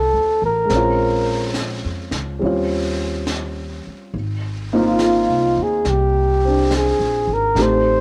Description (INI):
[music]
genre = jazz ballad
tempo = 70 BPM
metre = 4/4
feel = swing 68% on 8ths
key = unclear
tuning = A4 = 440 Hz
[part]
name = breathy flugelhorn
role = melody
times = 0.0-8.0 s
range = F4 to C5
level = -20 LUFS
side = equal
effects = cassette tape, plate reverb
[part]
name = warm upright piano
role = accompaniment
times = 0.0-8.0 s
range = F3 to C5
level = -24 LUFS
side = equal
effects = cassette tape
[part]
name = upright bass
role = bass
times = 0.0-8.0 s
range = Ab1 to F2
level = -26 LUFS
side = equal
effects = none
[part]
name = jazz brush drum kit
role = drums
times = 0.7-8.0 s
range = brushed snare drum, hi-hat, snare drum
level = -32 LUFS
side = equal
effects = none
[sound]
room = moderate booth ambience, RT60 0.2 s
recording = home recording on cassette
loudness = -19 LUFS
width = mono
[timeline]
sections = 0.0-8.0 A section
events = none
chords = 0.0 F6; 0.7 Bbm7; 2.4 Eb13; 4.1 Ab69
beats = | 0.70 1.56 2.41 3.28 | 4.14 5.00 5.86 6.71 | 7.57